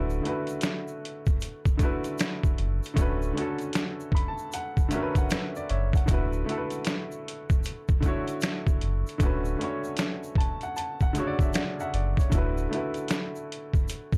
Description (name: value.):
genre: lo-fi hip hop.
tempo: 77 BPM.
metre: 4/4.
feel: swing 64% on 16ths.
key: unclear.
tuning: A4 = 439 Hz.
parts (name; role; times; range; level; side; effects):
bright upright piano; accompaniment; 0.0-14.2 s; C#3 to B5; -34 LUFS; equal; low-pass filter.
sub bass with octave; bass; 0.0-12.7 s; D1 to F#1; -30 LUFS; equal; transformer saturation.
egg shaker; percussion; 0.1-14.2 s; none; -51 LUFS; equal; none.
trip hop sampler-style drum kit; drums; 0.3-14.2 s; hi-hat, kick drum, snare drum; -28 LUFS; equal; none.
room: little or no reverb.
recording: dry, gritty hardware recording, cassette tape.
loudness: -28 LUFS.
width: mono.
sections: 0.0-14.2 A section.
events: upright piano fill 3.7-6.1, 10.0-12.3.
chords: 0.0 D69; 3.0 Bm9/D; 6.1 D69.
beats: 0.63 1.41 2.19 | 2.96 3.74 4.52 5.30 | 6.08 6.86 7.64 8.42 | 9.20 9.98 10.76 11.54 | 12.31 13.09 13.87.